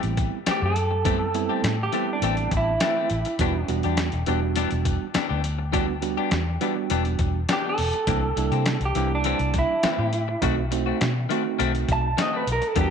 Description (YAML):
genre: straight-eighth soul blues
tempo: 102 BPM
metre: 4/4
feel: straight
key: E minor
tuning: A4 = 440 Hz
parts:
  - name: reed electric piano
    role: accompaniment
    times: 0.0-12.9 s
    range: G3 to F#4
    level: -28 LUFS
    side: right 16 dB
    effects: none
  - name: clean electric guitar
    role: stabs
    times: 0.0-12.9 s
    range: D#3 to G4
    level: -29 LUFS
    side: left 15 dB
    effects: spring reverb
  - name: vintage muted fingered electric bass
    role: bass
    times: 0.0-12.9 s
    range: E1 to C3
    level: -26 LUFS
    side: left 1 dB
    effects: none
  - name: dusty soul sampler-style drum kit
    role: drums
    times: 0.0-12.9 s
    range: hi-hat, kick drum, snare drum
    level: -28 LUFS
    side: left 1 dB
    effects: none
  - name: electric guitar through a small old amp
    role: melody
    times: 0.5-3.7, 7.5-12.9 s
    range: D4 to A5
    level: -26 LUFS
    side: right 3 dB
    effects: spring reverb, tape echo
room: light reverb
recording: 1960s-style stereo with parts hard left and right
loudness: -21 LUFS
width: side -7 dB against mid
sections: 0.0-12.9 A section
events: clean electric guitar solo 0.0-12.9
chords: 0.0 Am7; 3.4 Em7; 8.1 C7; 10.4 B7b9